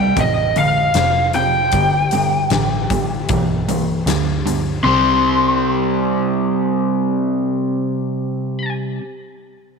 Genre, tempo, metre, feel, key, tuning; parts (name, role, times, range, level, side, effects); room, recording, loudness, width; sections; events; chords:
blues rock power trio and southern rock; 77 BPM; 4/4; straight; A4 = 440 Hz
lead guitar through a small cranked amp; melody; 0.0-8.7 s; Eb5 to C6; -18 LUFS; left 2 dB; overdrive
overdriven semi-hollow guitar; riff; 0.0-9.0 s; F2 to C4; -18 LUFS; right 1 dB; spring reverb
vintage muted picked electric bass; bass; 0.0-9.0 s; F1 to D2; -24 LUFS; right 1 dB
huge arena drum kit; drums; 0.2-4.6 s; hi-hat, kick drum, snare drum; -25 LUFS; left 5 dB
moderate echo chamber reverb, RT60 2.3 s; 1960s-style stereo; -15 LUFS; side -5 dB against mid
0.0-4.8 A section; 4.8-8.0 B section
0.2 F; 1.7 G; 4.8 C5